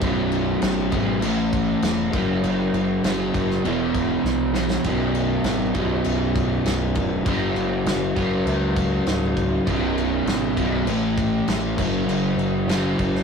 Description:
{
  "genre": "quiet-loud alternative rock",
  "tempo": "100 BPM",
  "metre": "4/4",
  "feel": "straight",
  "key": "unclear",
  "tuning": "A4 = 445 Hz",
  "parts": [
    { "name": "raw garage guitar", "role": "riff", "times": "0.0-13.2 s", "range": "B1 to A3", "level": "-21 LUFS", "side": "equal", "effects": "overdrive" },
    { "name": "fuzz picked electric bass", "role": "bass", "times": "0.0-13.2 s", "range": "B0 to C#2", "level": "-27 LUFS", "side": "equal", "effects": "overdrive" },
    { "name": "loose indie drum kit", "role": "drums", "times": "0.0-13.2 s", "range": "crash cymbal, kick drum, snare drum, splash cymbal", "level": "-27 LUFS", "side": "left 1 dB", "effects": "none" }
  ],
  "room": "light reverb",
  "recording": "rough rehearsal-room recording, warm saturation",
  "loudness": "-20 LUFS",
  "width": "side -6 dB against mid",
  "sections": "0.0-13.2 A section",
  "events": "drum fill 4.2-4.8",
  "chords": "0.0 B5; 1.2 A5; 2.1 F#5; 3.6 E5; 4.8 B5; 7.3 F#5; 9.7 B5; 10.9 A5; 11.8 F#5"
}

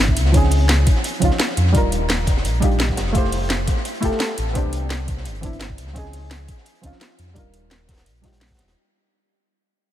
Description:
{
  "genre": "liquid drum and bass",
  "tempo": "171 BPM",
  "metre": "4/4",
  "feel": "straight",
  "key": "unclear",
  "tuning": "A4 = 444 Hz",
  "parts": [
    { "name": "deep mellow chord stab", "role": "accompaniment", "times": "0.0-8.8 s", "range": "E3 to C5", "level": "-24 LUFS", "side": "right 1 dB", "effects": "chorus, ping-pong delay" },
    { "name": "sub bass with octave", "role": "bass", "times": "0.0-8.7 s", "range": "Eb1 to F2", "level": "-21 LUFS", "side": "equal", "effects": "none" },
    { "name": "electronic kick drum", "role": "drums", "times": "0.1-8.6 s", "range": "none", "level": "-20 LUFS", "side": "equal", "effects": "none" },
    { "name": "crunchy breakbeat drum kit", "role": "drums", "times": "0.2-8.8 s", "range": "hi-hat, snare drum", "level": "-32 LUFS", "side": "equal", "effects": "high-pass filter on hats, high-pass filter on snare, high-pass filter on room" },
    { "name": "garage drum kit", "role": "drums", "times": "0.2-8.7 s", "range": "hi-hat, snare drum", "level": "-24 LUFS", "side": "equal", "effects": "none" }
  ],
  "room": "light reverb, small room ambience",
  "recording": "none",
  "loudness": "-17 LUFS",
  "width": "side -12 dB against mid",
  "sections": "0.0-8.8 A section",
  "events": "fade-out 0.0-8.8",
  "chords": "0.3 Dbmaj9; 1.7 Ebmaj9; 3.1 Fmaj9; 4.6 Cmaj9; 6.0 Dbmaj9; 7.4 Ebmaj9"
}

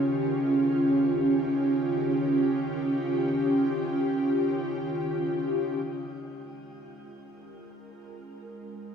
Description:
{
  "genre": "ambient",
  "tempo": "free time",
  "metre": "none",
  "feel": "none",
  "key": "Db lydian",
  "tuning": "A4 = 439 Hz",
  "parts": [
    { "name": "ethereal airy pad", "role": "sustained chords", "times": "0.0-8.9 s", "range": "Eb3 to Bb4", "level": "-26 LUFS", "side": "equal", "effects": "ensemble chorus, built-in reverb, shimmer reverb" },
    { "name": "analog drone", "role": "drone", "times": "0.0-5.9 s", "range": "Db3", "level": "-32 LUFS", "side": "equal", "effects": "chorus" }
  ],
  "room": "wet lush hall reverb, RT60 2.6 s",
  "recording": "small room ambience",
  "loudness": "-24 LUFS",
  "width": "side -7 dB against mid",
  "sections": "0.0-5.8 A section; 5.8-8.9 B section",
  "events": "none",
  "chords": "0.0 Eb9; 5.8 Db6; 8.3 Ab5"
}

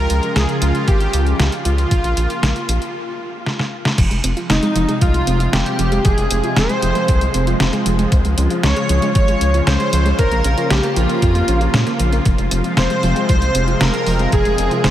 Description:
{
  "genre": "synthwave",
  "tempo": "116 BPM",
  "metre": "4/4",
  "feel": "straight",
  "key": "F minor",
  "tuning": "A4 = 440 Hz",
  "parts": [
    { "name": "soft supersaw", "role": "melody", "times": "0.0-14.9 s", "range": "Eb4 to Db5", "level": "-22 LUFS", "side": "equal", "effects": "cassette tape, analog delay" },
    { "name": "lush unison pad", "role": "sustained chords", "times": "0.0-14.9 s", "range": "C3 to F4", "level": "-23 LUFS", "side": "equal", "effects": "chorus, phaser, sidechain pumping" },
    { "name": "round analog bass", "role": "bass", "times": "0.0-14.9 s", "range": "F1 to Bb2", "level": "-18 LUFS", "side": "equal", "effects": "none" },
    { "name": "detuned 8-bit digital drum machine", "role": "drums", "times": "0.1-14.9 s", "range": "crash cymbal, hi-hat, snare drum", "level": "-22 LUFS", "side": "equal", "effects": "small room ambience" },
    { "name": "electronic kick drum", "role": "drums", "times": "0.9-14.4 s", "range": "none", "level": "-17 LUFS", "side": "equal", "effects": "small room ambience" },
    { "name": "soft round pluck", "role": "arpeggios", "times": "4.0-14.9 s", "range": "F3 to F4", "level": "-24 LUFS", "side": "right 2 dB", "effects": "chorus, vintage 12-bit sampler grit, diffuse ambient delay" },
    { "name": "airy dreamy lead", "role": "second line", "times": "4.5-14.9 s", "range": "Eb4 to Db5", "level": "-25 LUFS", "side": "equal", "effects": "chorus, phaser, cassette tape, diffuse ambient delay" }
  ],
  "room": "moderate huge ambient reverb, RT60 9.2 s",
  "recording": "dreamy mix soaked in reverb",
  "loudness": "-14 LUFS",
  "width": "side -12 dB against mid",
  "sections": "0.0-4.0 A section; 4.0-14.9 B section",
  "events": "break 2.9-4.0; drum fill 3.5-4.0",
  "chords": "0.0 Db; 1.9 Bbm; 4.0 Fm; 8.1 Db; 10.2 Bbm; 12.3 Fm"
}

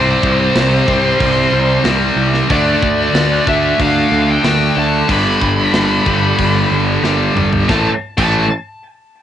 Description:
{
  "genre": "heavy metal",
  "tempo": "92 BPM",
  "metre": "4/4",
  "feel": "straight",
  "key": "A minor",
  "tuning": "A4 = 441 Hz",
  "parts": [
    { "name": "high-gain lead guitar", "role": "melody", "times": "0.0-8.5 s", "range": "C5 to B5", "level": "-18 LUFS", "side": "left 2 dB", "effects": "distortion, cassette tape" },
    { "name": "scooped high-gain guitar", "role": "riff", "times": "0.0-8.4 s", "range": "G2 to D4", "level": "-17 LUFS", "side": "left 9 dB", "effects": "distortion, cassette tape" },
    { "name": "scooped high-gain guitar", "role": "riff", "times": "0.0-8.5 s", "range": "G2 to D4", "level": "-17 LUFS", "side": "right 9 dB", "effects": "distortion, cassette tape" },
    { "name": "fuzz picked electric bass", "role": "bass", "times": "0.0-8.5 s", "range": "G1 to D2", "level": "-18 LUFS", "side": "equal", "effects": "overdrive" },
    { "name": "tight metal drum kit", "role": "drums", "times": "0.2-8.3 s", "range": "crash cymbal, hi-hat, kick drum, snare drum, toms", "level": "-21 LUFS", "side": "equal", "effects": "cassette tape" }
  ],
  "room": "light reverb",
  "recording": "home recording on cassette, nothing above 10.6 kHz",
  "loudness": "-11 LUFS",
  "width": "side -10 dB against mid",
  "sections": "0.0-7.7 A section; 7.7-9.2 B section",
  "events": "drum fill 7.0-7.7",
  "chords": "0.0 C5; 2.5 D5; 5.1 G; 7.7 A5"
}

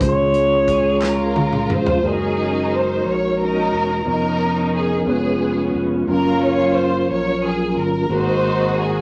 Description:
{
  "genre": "slow gospel",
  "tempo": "59 BPM (dotted quarters)",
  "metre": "6/8",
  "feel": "straight",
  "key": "Db major",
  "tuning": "A4 = 440 Hz",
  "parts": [
    { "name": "dark alto saxophone", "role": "melody", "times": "0.0-1.7 s", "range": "Db5", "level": "-20 LUFS", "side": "equal", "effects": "none" },
    { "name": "mellow tine electric piano", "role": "accompaniment", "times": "0.0-9.0 s", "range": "Ab2 to C6", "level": "-27 LUFS", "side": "equal", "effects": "none" },
    { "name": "mellow tonewheel organ", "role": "sustained chords", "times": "0.0-9.0 s", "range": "F3 to Cb5", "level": "-24 LUFS", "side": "equal", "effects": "fast rotary speaker, chorus vibrato" },
    { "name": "fingered electric bass", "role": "bass", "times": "0.0-9.0 s", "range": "Fb1 to Db2", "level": "-29 LUFS", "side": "equal", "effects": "none" },
    { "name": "natural country drum kit", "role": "drums", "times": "0.0-2.0 s", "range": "hi-hat, kick drum, snare drum, toms", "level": "-26 LUFS", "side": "equal", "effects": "none" },
    { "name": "warm studio string section", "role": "melody", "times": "0.7-9.0 s", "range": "Cb4 to Db5", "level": "-23 LUFS", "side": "equal", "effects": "none" },
    { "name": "group handclap", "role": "percussion", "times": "1.0-1.3 s", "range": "none", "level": "-33 LUFS", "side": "equal", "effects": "none" }
  ],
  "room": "moderate studio reverb, RT60 0.6 s",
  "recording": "none",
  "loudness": "-19 LUFS",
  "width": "mono",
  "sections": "0.0-2.0 A section; 2.0-9.0 B section",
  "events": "drum fill 1.0-2.0",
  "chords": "0.0 Dbmaj7; 2.0 Gb69; 4.1 Db13/F; 5.1 Db7/F; 6.1 Gbmaj7; 8.1 Ab9"
}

